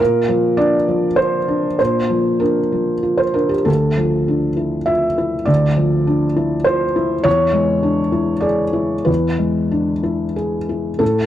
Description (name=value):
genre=neoclassical minimalist piano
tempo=91-105 BPM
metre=3/4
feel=rubato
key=unclear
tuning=A4 = 442 Hz
part: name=felt-muted upright piano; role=solo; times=0.0-11.3 s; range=D2 to E5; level=-15 LUFS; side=equal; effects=none
room=light reverb, small room reverb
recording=dry, close 1970s-style studio recording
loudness=-15 LUFS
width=side -12 dB against mid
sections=0.0-11.0 A section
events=none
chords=0.0 Bb; 3.7 Dmadd9; 7.3 E7